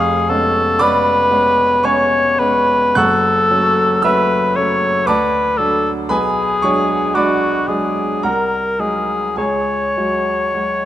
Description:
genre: classical, romantic duo for cor anglais and grand piano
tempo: 51-60 BPM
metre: 3/4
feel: rubato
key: unclear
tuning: A4 = 440 Hz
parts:
  - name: mellow cor anglais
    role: melody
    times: 0.0-10.9 s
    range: F#4 to C#5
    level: -15 LUFS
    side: left 1 dB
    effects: none
  - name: bright baby grand piano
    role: accompaniment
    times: 0.0-10.9 s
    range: E#1 to F#6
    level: -18 LUFS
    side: right 1 dB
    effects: none
room: moderate scoring stage reverb, RT60 1.9 s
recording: close, detailed microphones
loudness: -13 LUFS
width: side -12 dB against mid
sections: 0.0-10.9 A section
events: none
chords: 0.0 C#7/E#; 3.0 F#m; 5.1 D; 6.1 G#m7b5/B; 8.2 G#7/B#; 9.4 C#sus4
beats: 0.82 1.85 | 2.98 4.04 5.07 | 6.09 7.14 8.22 | 9.37 10.55

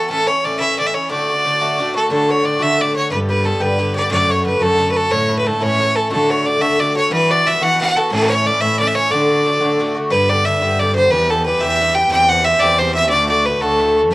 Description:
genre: celtic folk, Celtic jig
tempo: 120 BPM (dotted quarters)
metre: 6/8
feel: straight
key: D major, G major from 10.1 s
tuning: A4 = 440 Hz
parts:
  - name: bright fiddle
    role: melody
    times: 0.0-14.1 s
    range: A4 to G5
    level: -15 LUFS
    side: equal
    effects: plate reverb
  - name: Irish bouzouki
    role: accompaniment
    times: 0.0-14.1 s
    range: G2 to G4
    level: -20 LUFS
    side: left 1 dB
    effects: cassette tape, plate reverb
  - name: muted cello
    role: bass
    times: 2.1-14.1 s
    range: D2 to E3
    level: -21 LUFS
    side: equal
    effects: tube saturation
room: wet booth ambience, RT60 0.2 s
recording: home recording on cassette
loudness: -13 LUFS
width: side -19 dB against mid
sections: 0.0-2.1 A section; 2.1-10.1 A section; 10.1-14.1 B section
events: none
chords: 0.1 A; 1.1 D; 3.1 G; 4.1 D/F#; 5.1 Asus4; 5.6 A; 6.1 D; 7.1 Emadd9; 8.1 A; 9.1 D; 10.1 G; 11.1 Em; 12.1 C/E; 13.1 D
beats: | 0.10 0.60 | 1.10 1.60 | 2.10 2.60 | 3.10 3.60 | 4.10 4.60 | 5.10 5.61 | 6.11 6.61 | 7.11 7.61 | 8.11 8.61 | 9.11 9.61 | 10.11 10.61 | 11.11 11.61 | 12.11 12.62 | 13.12 13.62 | 14.12

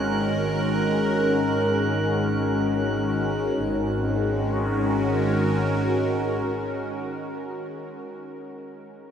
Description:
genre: ambient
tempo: free time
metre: none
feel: none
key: unclear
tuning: A4 = 440 Hz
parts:
  - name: evolving wavetable pad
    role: sustained chords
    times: 0.0-7.5 s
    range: D#3 to A#4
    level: -23 LUFS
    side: equal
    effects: phaser, built-in reverb
  - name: rich chamber double bass section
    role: bass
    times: 0.0-6.4 s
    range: G#1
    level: -28 LUFS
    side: equal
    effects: none
  - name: drifting glass-harmonics texture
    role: texture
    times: 0.0-3.6 s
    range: F#6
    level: -35 LUFS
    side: right 2 dB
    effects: chorus, built-in reverb
room: wet huge ambient reverb, RT60 7.4 s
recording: in a vast, echoing space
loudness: -22 LUFS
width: side -8 dB against mid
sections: 0.0-3.6 A section; 3.6-7.4 B section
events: none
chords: 0.0 F#/G#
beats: free time

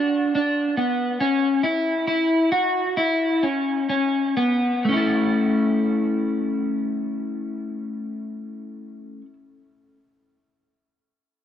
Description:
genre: dream pop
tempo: 62-71 BPM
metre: 4/4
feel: straight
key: A major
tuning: A4 = 436 Hz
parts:
  - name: electric guitar at the edge of break-up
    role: solo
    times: 0.0-9.3 s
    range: A3 to A4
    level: -20 LUFS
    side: left 1 dB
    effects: analog chorus, dub echo
room: wet spring reverb, RT60 1.7 s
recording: echo-heavy mix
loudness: -20 LUFS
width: side -9 dB against mid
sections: 0.0-4.8 A section; 4.8-8.7 B section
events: slowing down 0.0-4.8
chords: 0.0 G (rootless); 1.2 C#madd11; 3.0 Bsus24; 4.8 A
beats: 0.35 | 1.20 2.08 2.97 3.90 | 4.85 5.81 6.78 7.75

